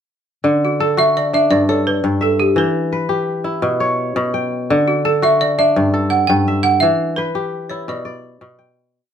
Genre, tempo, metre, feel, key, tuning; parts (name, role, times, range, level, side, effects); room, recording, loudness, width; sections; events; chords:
west african traditional, West African string and xylophone music; 113 BPM (dotted quarters); 12/8; straight; D major; A4 = 440 Hz
kora; arpeggios; 0.4-9.1 s; G2 to G5; -17 LUFS; left 1 dB
balafon; melody; 0.6-8.7 s; F#4 to G5; -16 LUFS; right 2 dB; plate reverb
wet studio reverb, RT60 0.6 s; -14 LUFS; side -8 dB against mid
0.4-8.9 A section
fade-out 6.8-8.9
0.4 D; 1.5 G; 2.6 Em; 3.6 Em6/B; 4.7 D; 5.8 G5; 6.8 Em; 7.9 Bm